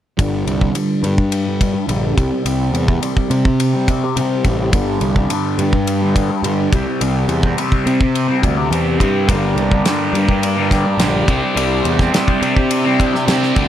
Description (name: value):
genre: psychedelic rock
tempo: 105 BPM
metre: 4/4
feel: straight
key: G dorian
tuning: A4 = 439 Hz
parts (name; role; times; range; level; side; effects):
- fuzz guitar; riff; 0.2-13.7 s; G2 to C4; -18 LUFS; left 1 dB; distortion, phaser, low-pass filter
- fuzz picked electric bass; bass; 0.2-13.7 s; G1 to C3; -19 LUFS; equal; overdrive
- damped 70s drum kit; drums; 0.2-13.7 s; kick drum, ride cymbal, snare drum; -20 LUFS; equal; none
- overdriven combo organ; sustained chords; 9.3-13.7 s; Bb3 to D5; -22 LUFS; right 3 dB; low-pass filter
room: light reverb, small room ambience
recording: none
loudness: -14 LUFS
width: side -11 dB against mid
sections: 0.2-13.7 A section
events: filter sweep 0.2-13.7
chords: 0.2 Gm; 2.2 C5; 4.7 G5; 6.7 C; 9.3 Gm; 11.3 Cadd9